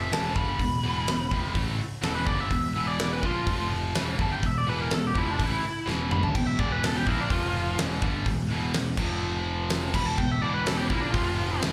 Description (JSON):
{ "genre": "hard rock", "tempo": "125 BPM", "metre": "4/4", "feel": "straight", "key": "unclear", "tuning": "A4 = 437 Hz", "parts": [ { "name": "biting lead guitar", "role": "melody", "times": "0.0-11.6 s", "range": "D4 to B5", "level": "-33 LUFS", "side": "equal", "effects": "overdrive, slapback echo" }, { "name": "tight distorted guitar", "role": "riff", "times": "0.0-11.7 s", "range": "E2 to A#3", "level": "-33 LUFS", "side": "equal", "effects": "distortion, slapback echo" }, { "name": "picked electric bass", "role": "bass", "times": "0.0-11.7 s", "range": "E1 to A#1", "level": "-33 LUFS", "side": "equal", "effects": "none" }, { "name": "huge arena drum kit", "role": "drums", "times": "0.1-11.7 s", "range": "crash cymbal, hi-hat, kick drum, snare drum, toms", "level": "-32 LUFS", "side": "equal", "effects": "none" } ], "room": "studio ambience", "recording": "live gig heard through the venue's PA, club reverb", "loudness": "-27 LUFS", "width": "mono", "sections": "0.0-11.7 A section", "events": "lead electric guitar solo 0.0-11.7; drum fill 5.9-6.4", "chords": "0.1 Em; 3.5 F5; 4.0 Em; 7.3 F5; 7.8 Em; 9.0 F5; 9.9 E5; 11.1 F5" }